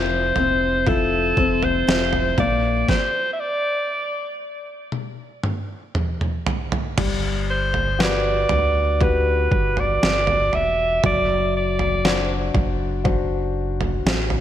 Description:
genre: pop ballad.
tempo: 59 BPM.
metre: 4/4.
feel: straight.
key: G major from 7.0 s.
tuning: A4 = 438 Hz.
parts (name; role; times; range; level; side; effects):
clear alto saxophone; melody; 0.0-12.5 s; A4 to E5; -22 LUFS; right 1 dB; ping-pong delay.
dark upright piano; accompaniment; 0.0-14.4 s; F3 to C5; -26 LUFS; left 7 dB; none.
picked steel-string acoustic guitar; arpeggios; 0.0-3.5 s; Bb2 to E4; -29 LUFS; right 2 dB; wide subtle chorus, ping-pong delay.
sub bass with octave; bass; 0.0-14.4 s; E1 to D2; -25 LUFS; equal; none.
boom bap sampler-style drum kit; drums; 0.4-14.4 s; crash cymbal, kick drum, snare drum, toms; -23 LUFS; right 1 dB; overdrive, gated reverb.
room: light reverb, small room ambience.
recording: bright 1980s-style digital production.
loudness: -18 LUFS.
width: side -11 dB against mid.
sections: 0.0-7.0 A section; 7.0-14.4 A section.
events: stop 2.9-7.0; drum fill 4.9-7.0.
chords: 0.0 F5; 2.4 Bb; 4.9 N.C.; 7.0 Gmaj7; 11.0 D7/F#.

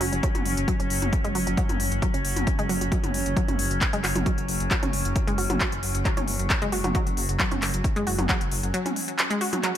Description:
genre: driving peak-time techno.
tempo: 134 BPM.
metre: 4/4.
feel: straight.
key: unclear.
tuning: A4 = 439 Hz.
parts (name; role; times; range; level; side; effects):
analog pluck; riff; 0.0-9.7 s; F#3 to F#4; -30 LUFS; equal; chorus, sidechain pumping, ping-pong delay.
dark detuned saw bass; bass; 0.0-8.7 s; F#1; -29 LUFS; equal; sidechain pumping.
overtone-sweeping drone; drone; 0.0-9.8 s; F#3 to C#4; -32 LUFS; equal; chorus, built-in reverb, sidechain pumping.
techno drum kit; drums; 0.0-9.8 s; handclaps, hi-hat, toms; -28 LUFS; left 1 dB; none.
electronic kick drum; drums; 0.2-8.4 s; none; -26 LUFS; equal; none.
room: light reverb.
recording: none.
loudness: -22 LUFS.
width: side -10 dB against mid.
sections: 0.0-9.8 A section.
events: filter sweep on synth arpeggio sound 0.0-9.8.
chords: 0.0 F#5.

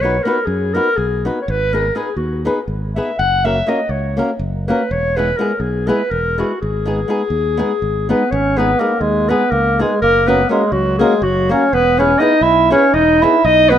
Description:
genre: balkan folk.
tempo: 246 BPM (eighths).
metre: 7/8.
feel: straight.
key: G# minor.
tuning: A4 = 440 Hz.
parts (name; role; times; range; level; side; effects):
mellow clarinet; melody; 0.0-13.8 s; F#4 to F#5; -16 LUFS; equal; slapback echo.
flamenco guitar; accompaniment; 0.0-13.8 s; G#3 to B4; -20 LUFS; left 2 dB; none.
fingered electric bass; bass; 0.0-13.8 s; E1 to F#2; -21 LUFS; equal; none.
mellow clarinet; second line; 8.1-13.8 s; F#3 to E4; -16 LUFS; right 1 dB; none.
room: moderate plate reverb, RT60 3.2 s.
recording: rough home demo mix.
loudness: -13 LUFS.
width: side -10 dB against mid.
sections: 0.0-8.3 A section; 8.3-13.8 A section.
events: none.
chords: 0.0 B; 1.5 G#m; 3.2 F#; 4.9 E; 6.6 G#m; 10.0 F#; 11.7 E.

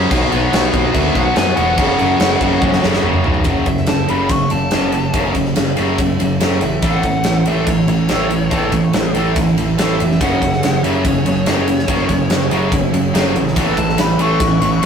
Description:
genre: hard rock.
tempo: 143 BPM.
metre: 4/4.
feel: straight.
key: F# minor.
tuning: A4 = 440 Hz.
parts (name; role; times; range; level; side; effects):
overdriven tonewheel organ; sustained chords; 0.0-3.4, 10.2-14.9 s; F#3 to C#5; -27 LUFS; equal; none.
high-gain distorted guitar; riff; 0.0-14.9 s; F#2 to B3; -22 LUFS; left 3 dB; distortion.
overdriven electric guitar; riff; 0.0-14.9 s; F#2 to B3; -18 LUFS; right 2 dB; none.
overdriven electric guitar; riff; 0.0-3.5 s; F#2 to C#4; -27 LUFS; equal; none.
growling picked electric bass; bass; 0.0-14.9 s; E1 to F#2; -20 LUFS; equal; overdrive.
big rock drum kit; drums; 0.1-14.9 s; crash cymbal, kick drum, ride cymbal, snare drum, toms; -18 LUFS; equal; none.
dark smooth lead guitar; melody; 0.4-14.9 s; C#5 to C#6; -22 LUFS; left 1 dB; overdrive.
room: moderate studio reverb, RT60 0.5 s.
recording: rough rehearsal-room recording, warm saturation.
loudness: -13 LUFS.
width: side -7 dB against mid.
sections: 0.0-3.5 A section; 3.5-14.9 B section.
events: drum fill 2.6-3.5; lead electric guitar solo 3.5-14.9.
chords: 0.1 B5; 1.8 F#5; 3.5 F#m; 6.8 A; 10.2 F#5; 13.6 A.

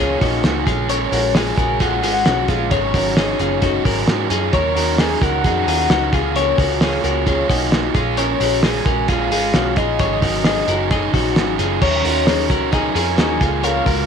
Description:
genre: jangly indie pop.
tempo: 132 BPM.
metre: 4/4.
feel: straight.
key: Eb minor.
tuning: A4 = 440 Hz.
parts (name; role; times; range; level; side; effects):
soft octave-layered synth lead; melody; 0.0-14.1 s; Db5 to Ab5; -22 LUFS; left 4 dB; chorus, phaser, slapback echo.
crunchy overdriven guitar; accompaniment; 0.0-14.1 s; Ab2 to Bb4; -22 LUFS; right 15 dB; none.
twelve-string electric guitar; arpeggios; 0.0-14.1 s; Db4 to Db5; -22 LUFS; left 12 dB; slapback echo.
vintage muted picked electric bass; bass; 0.0-14.1 s; Gb1 to Ab2; -24 LUFS; equal; none.
cloth-damped thuddy drum kit; drums; 0.2-14.0 s; crash cymbal, hi-hat, kick drum, snare drum; -20 LUFS; right 1 dB; none.
room: light reverb.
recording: 1960s-style stereo with parts hard left and right.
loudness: -15 LUFS.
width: side -7 dB against mid.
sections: 0.0-11.8 A section; 11.8-14.1 A section.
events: none.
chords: 0.0 Db6; 0.7 Bbm7; 2.7 Ab7sus4; 4.5 Ebm7; 6.1 Db6; 8.0 Bbm7; 10.0 Ab7sus4; 11.8 Ebm7; 13.4 Db6.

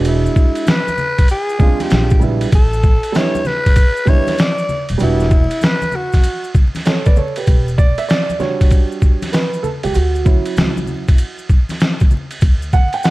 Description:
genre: hip hop, jazz-hop.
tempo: 97 BPM.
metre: 4/4.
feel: swing 66% on 16ths.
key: E dorian.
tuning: A4 = 437 Hz.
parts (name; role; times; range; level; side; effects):
warm upright piano; accompaniment; 0.0-13.1 s; F#3 to G5; -20 LUFS; right 5 dB; none.
upright bass; bass; 0.0-12.9 s; D#1 to D2; -18 LUFS; equal; none.
trip hop sampler-style drum kit; drums; 0.0-13.1 s; hi-hat, kick drum, ride cymbal, snare drum; -14 LUFS; equal; none.
maracas and congas; percussion; 0.0-13.1 s; none; -29 LUFS; left 2 dB; none.
growling alto saxophone; melody; 0.1-6.6 s; E4 to D5; -20 LUFS; left 1 dB; none.
room: studio reverb.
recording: dark, warm production, vinyl crackle.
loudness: -12 LUFS.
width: side -19 dB against mid.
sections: 0.0-7.5 A section; 7.5-13.1 B section.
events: upright piano solo 7.5-13.1.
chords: 0.0 E9; 1.9 A#9; 2.5 A9sus4; 5.0 Em9; 10.0 Dmaj9; 12.4 D.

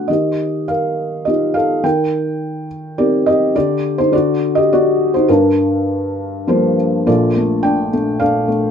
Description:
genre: classical, lyrical solo piano.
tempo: 104 BPM.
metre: 3/4.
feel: rubato.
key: G minor.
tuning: A4 = 440 Hz.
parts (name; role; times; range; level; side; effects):
felt-muted upright piano; solo; 0.0-8.7 s; Bb1 to G5; -14 LUFS; equal; none.
room: light reverb.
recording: minimal, uncompressed stereo recording.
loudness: -13 LUFS.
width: side -7 dB against mid.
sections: 0.0-7.1 A section; 7.1-8.7 B section.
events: none.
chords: 0.1 Ebadd9; 1.8 Cm7/Eb; 3.6 G5/D; 4.1 D; 5.3 Gm7; 7.1 Bbmaj7.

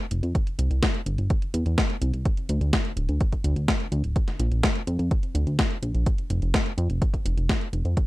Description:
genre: italo disco.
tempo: 126 BPM.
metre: 4/4.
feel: straight.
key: unclear.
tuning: A4 = 440 Hz.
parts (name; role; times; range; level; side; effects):
chorused synth bass; bass; 0.1-8.0 s; D1 to F2; -24 LUFS; equal; none.
gated 80s digital drum machine; drums; 0.1-8.1 s; hi-hat, snare drum; -27 LUFS; left 2 dB; gated reverb, gated reverb snare.
electronic kick drum; drums; 0.3-8.1 s; none; -25 LUFS; equal; none.
room: little or no reverb.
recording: dry, close 1970s-style studio recording.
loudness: -22 LUFS.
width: side -18 dB against mid.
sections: 0.0-8.1 A section.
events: none.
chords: none.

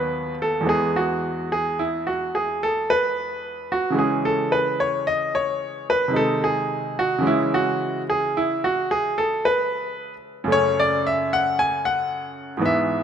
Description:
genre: classical, baroque-style suite movement for grand piano.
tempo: 55 BPM.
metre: 3/4.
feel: rubato.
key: unclear.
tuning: A4 = 440 Hz.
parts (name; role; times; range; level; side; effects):
bright baby grand piano; solo; 0.0-13.0 s; D#2 to G#5; -20 LUFS; equal; none.
room: moderate concert hall reverb, RT60 2.1 s.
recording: close, detailed microphones.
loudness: -20 LUFS.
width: side -8 dB against mid.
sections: 0.0-13.0 A section.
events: none.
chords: 0.0 B/D#; 0.7 E; 4.0 C#m; 6.2 G#/B#; 7.3 C#m; 10.5 F#m.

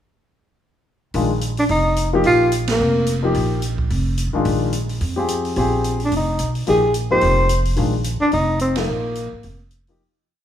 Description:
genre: modal jazz.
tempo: 217 BPM.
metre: 4/4.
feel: swing 58% on 8ths.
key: Bb mixolydian.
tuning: A4 = 440 Hz.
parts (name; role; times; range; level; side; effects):
warm baby grand piano; accompaniment; 1.1-10.0 s; Eb3 to Ab4; -22 LUFS; left 3 dB; none.
upright bass; bass; 1.1-10.0 s; F1 to F2; -22 LUFS; right 1 dB; none.
open jazz drum kit; drums; 1.1-9.9 s; hi-hat, kick drum, ride cymbal, snare drum; -30 LUFS; right 1 dB; none.
breathy tenor saxophone; melody; 1.6-3.2, 6.0-9.7 s; Bb3 to C5; -18 LUFS; equal; none.
room: light reverb.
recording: none.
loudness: -17 LUFS.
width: side -10 dB against mid.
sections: 1.1-10.0 A section.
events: band accent 2.7, 8.7; fade-out 8.2-10.0.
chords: 1.1 Bb7sus4.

